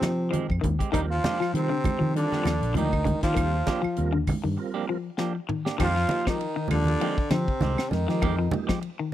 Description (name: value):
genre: afrobeat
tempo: 99 BPM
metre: 4/4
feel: swing 55% on 16ths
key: F dorian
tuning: A4 = 440 Hz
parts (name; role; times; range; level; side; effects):
- clear trombone; melody; 0.0-8.5 s; C4 to F4; -29 LUFS; right 3 dB; none
- raspy baritone saxophone; second line; 0.0-8.5 s; C3 to F3; -33 LUFS; left 8 dB; none
- tonewheel organ; accompaniment; 0.0-8.7 s; F3 to C5; -34 LUFS; right 7 dB; slow rotary speaker, chorus vibrato
- semi-hollow electric guitar; stabs; 0.0-8.9 s; Eb3 to G4; -34 LUFS; right 7 dB; none
- fingered electric bass; bass; 0.0-8.5 s; Bb1 to F3; -26 LUFS; equal; none
- tight funk drum kit; drums; 0.0-9.0 s; crash cymbal, hi-hat, kick drum, ride cymbal, snare drum, toms; -30 LUFS; equal; none
- claves; percussion; 0.0-8.8 s; none; -39 LUFS; right 9 dB; none
- congas; percussion; 0.0-9.0 s; none; -30 LUFS; right 3 dB; none
- electric guitar at the edge of break-up; arpeggios; 0.3-9.1 s; D3 to F3; -31 LUFS; left 7 dB; phaser
room: small room ambience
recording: dry, close 1970s-style studio recording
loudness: -23 LUFS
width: side -12 dB against mid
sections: 0.0-5.8 A section; 5.8-9.1 B section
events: break 4.6-5.8; drum fill 5.2-5.8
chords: 0.0 Fm9; 0.9 Ebmaj9; 5.8 Fm9